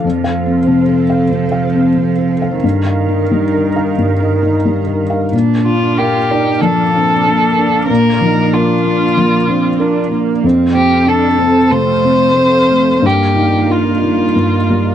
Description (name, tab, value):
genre	neoclassical piano and strings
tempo	92 BPM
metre	4/4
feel	uneven beats, rubato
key	Bb major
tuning	A4 = 439 Hz
part	muted cello	second line	0.0-14.9 s	Eb3 to F4	-18 LUFS	right 10 dB	none
part	felt-muted upright piano	accompaniment	0.0-14.9 s	F2 to F5	-14 LUFS	left 2 dB	none
part	analog string pad	sustained chords	0.0-14.9 s	Bb3 to F5	-23 LUFS	right 4 dB	ensemble chorus
part	muted violin	melody	5.7-14.9 s	F4 to C5	-14 LUFS	left 2 dB	none
room	light reverb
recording	dry, close 1970s-style studio recording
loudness	-11 LUFS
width	side -10 dB against mid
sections	0.0-5.3 A section; 5.3-14.9 B section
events	none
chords	0.0 F; 2.6 Ebadd9/G; 5.3 Bbmaj7; 10.4 F; 13.0 Ebadd9/G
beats	| 0.04 0.68 1.31 1.96 | 2.63 3.31 3.98 4.65 | 5.33 5.98 6.63 7.26 | 7.89 8.53 9.17 9.80 | 10.44 11.07 11.72 12.38 | 13.04 13.71 14.38